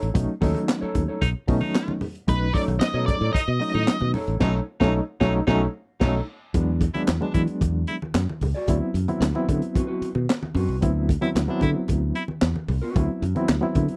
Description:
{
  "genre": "funk",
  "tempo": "112 BPM",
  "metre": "4/4",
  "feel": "straight",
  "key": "B mixolydian",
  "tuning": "A4 = 440 Hz",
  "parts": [
    { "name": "mellow electric guitar", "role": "accompaniment", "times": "0.0-13.0 s", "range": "C4 to D5", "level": "-32 LUFS", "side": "equal", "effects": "warbly pitch drift" },
    { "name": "fingered electric bass", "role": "bass", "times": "0.0-13.9 s", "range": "A1 to E3", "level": "-27 LUFS", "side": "equal", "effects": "none" },
    { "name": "crunchy breakbeat drum kit", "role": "drums", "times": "0.0-14.0 s", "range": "crash cymbal, handclaps, hi-hat, kick drum, snare drum", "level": "-26 LUFS", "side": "equal", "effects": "none" },
    { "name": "barky reed electric piano", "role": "stabs", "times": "0.1-14.0 s", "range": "F#3 to E4", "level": "-29 LUFS", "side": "equal", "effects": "overdrive, fast tremolo" },
    { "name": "congas", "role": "percussion", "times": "0.2-13.9 s", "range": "none", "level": "-35 LUFS", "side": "equal", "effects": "none" },
    { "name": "bright baritone saxophone", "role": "second line", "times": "1.2-8.0, 11.2-12.2 s", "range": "D4 to E4", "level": "-33 LUFS", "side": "equal", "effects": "none" },
    { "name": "octave-fuzz lead guitar", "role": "melody", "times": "2.3-4.1 s", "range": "B4 to D#5", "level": "-29 LUFS", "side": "equal", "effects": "distortion" }
  ],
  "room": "little or no reverb",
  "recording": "dry, close 1970s-style studio recording",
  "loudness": "-24 LUFS",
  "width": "mono",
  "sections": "0.0-6.5 A section; 6.5-14.0 B section",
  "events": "band accent 4.4-6.5",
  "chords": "0.0 B9; 6.5 E9; 8.7 D13"
}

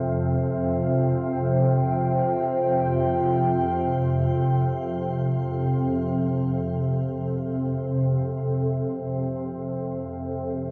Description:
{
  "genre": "dark ambient drone",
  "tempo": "free time",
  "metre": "none",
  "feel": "none",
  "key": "unclear",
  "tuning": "A4 = 441 Hz",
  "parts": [
    { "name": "dark analog pad", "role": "sustained chords", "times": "0.0-6.2 s", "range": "F4 to G5", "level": "-29 LUFS", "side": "equal", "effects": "lush chorus, shimmer reverb" },
    { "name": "organ-like drone", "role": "drone", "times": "0.0-10.7 s", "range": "F2 to C3", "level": "-26 LUFS", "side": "equal", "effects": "ensemble chorus, built-in reverb" }
  ],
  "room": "wet cathedral reverb, RT60 6.1 s",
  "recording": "none",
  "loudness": "-25 LUFS",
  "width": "mono",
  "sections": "0.0-6.2 A section; 6.2-10.7 B section",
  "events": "none",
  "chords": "0.0 F5"
}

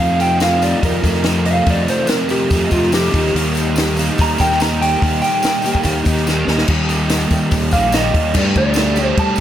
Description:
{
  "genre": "indie rock",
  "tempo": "143 BPM",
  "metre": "4/4",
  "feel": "straight",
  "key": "unclear",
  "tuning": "A4 = 440 Hz",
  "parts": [
    { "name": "electric guitar through a small old amp", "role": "melody", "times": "0.0-9.4 s", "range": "F4 to Bb5", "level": "-19 LUFS", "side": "right 1 dB", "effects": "slapback echo" },
    { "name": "crunchy overdriven guitar", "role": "riff", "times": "0.0-9.4 s", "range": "F2 to G4", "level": "-20 LUFS", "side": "right 6 dB", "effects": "ensemble chorus, slapback echo" },
    { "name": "fuzz guitar", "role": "riff", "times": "0.0-9.4 s", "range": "Eb3 to G4", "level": "-22 LUFS", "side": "left 6 dB", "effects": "distortion, slapback echo" },
    { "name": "fuzz fingered electric bass", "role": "bass", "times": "0.0-9.4 s", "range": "Bb1 to G3", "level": "-19 LUFS", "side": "equal", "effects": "overdrive" },
    { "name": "compact cocktail drum kit", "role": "drums", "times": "0.2-9.4 s", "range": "crash cymbal, hi-hat, kick drum, snare drum", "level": "-20 LUFS", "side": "left 1 dB", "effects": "none" },
    { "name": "tambourine", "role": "percussion", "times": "0.2-9.4 s", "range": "none", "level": "-32 LUFS", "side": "left 3 dB", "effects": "none" }
  ],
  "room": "light reverb",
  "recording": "none",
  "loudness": "-13 LUFS",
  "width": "side -11 dB against mid",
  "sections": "0.0-6.7 A section; 6.7-8.4 B section; 8.4-9.4 C section",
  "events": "clean electric guitar solo 0.0-6.7; drum fill 6.3-6.7",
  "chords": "0.0 F7(no3); 3.1 Eb; 8.4 Gsus2"
}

